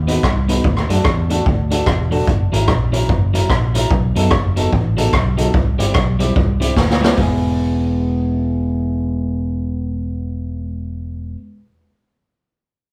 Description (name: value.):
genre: ska.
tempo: 147 BPM.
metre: 4/4.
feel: swing 62% on 8ths.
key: unclear.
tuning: A4 = 443 Hz.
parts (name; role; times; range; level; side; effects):
mellow fretless electric bass; bass; 0.0-11.4 s; E1 to F#2; -22 LUFS; equal; none.
electric guitar at the edge of break-up; accompaniment; 0.1-11.4 s; F#3 to B4; -24 LUFS; equal; spring reverb.
raw garage drum kit; drums; 0.1-7.3 s; hi-hat, kick drum, rim click, snare drum; -20 LUFS; equal; none.
room: moderate large studio reverb, RT60 0.9 s.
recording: band playing live in one room.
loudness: -17 LUFS.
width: mono.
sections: 0.0-7.2 A section; 7.2-10.4 B section.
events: drum fill 6.8-7.2.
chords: 0.0 B; 0.6 D; 2.3 F#7; 3.9 B7; 5.5 C; 7.2 E.